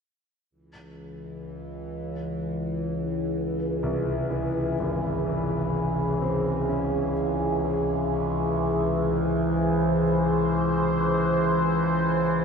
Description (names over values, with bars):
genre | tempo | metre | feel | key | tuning
dark ambient drone | free time | none | none | unclear | A4 = 440 Hz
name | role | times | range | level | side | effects
overtone-sweeping drone | drone | 1.0-12.4 s | C#2 to E3 | -25 LUFS | left 1 dB | chorus, built-in reverb
sweeping resonant pad | sustained chords | 1.0-12.4 s | G#4 to B#4 | -29 LUFS | right 1 dB | wide subtle chorus, shimmer reverb
warm grand piano | arpeggios | 3.8-12.4 s | G#1 to C#4 | -33 LUFS | equal | lush chorus, tape echo, shimmer reverb
room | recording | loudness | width
wet lush hall reverb, RT60 2.8 s | dreamy mix soaked in reverb | -23 LUFS | side -6 dB against mid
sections
0.5-12.4 A section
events
fade-in on analog synth pad 0.5-12.4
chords
0.5 C#m